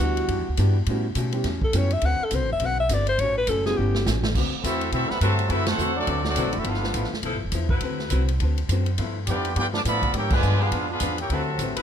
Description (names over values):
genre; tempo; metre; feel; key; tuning
jazz, big band swing; 207 BPM; 4/4; swing 60% on 8ths; unclear; A4 = 441 Hz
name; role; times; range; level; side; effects
breathy alto saxophone; melody; 0.0-4.1 s; F#4 to F#5; -25 LUFS; left 2 dB; none
archtop guitar, miked and amplified; accompaniment; 0.0-11.8 s; G2 to B4; -32 LUFS; left 7 dB; none
clear baby grand piano; accompaniment; 0.0-4.0 s; G3 to G4; -30 LUFS; right 4 dB; none
upright bass; bass; 0.0-11.8 s; F1 to B2; -25 LUFS; equal; none
swinging big-band drum kit; drums; 0.2-11.8 s; crash cymbal, hi-hat, kick drum, ride cymbal, snare drum; -29 LUFS; equal; none
warm trumpet section; melody; 4.6-7.1, 9.3-11.8 s; C4 to D6; -27 LUFS; equal; none
muted trombone section; second line; 4.6-7.1, 9.3-11.8 s; C3 to G4; -30 LUFS; right 2 dB; none
clear saxophone section; sustained chords; 5.2-11.8 s; F3 to B4; -33 LUFS; left 2 dB; none
room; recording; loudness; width
little or no reverb; close, detailed microphones; -21 LUFS; side -9 dB against mid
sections
0.0-4.3 A section; 4.3-11.8 B section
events
alto saxophone solo 0.0-4.3; drum fill 3.8-4.3; band accent 5.6, 10.3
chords
0.0 Em7; 0.9 A13; 2.0 D6; 3.2 A13; 4.3 D13; 6.7 G13; 7.8 D13; 9.0 G13; 10.1 G#dim7; 11.3 D13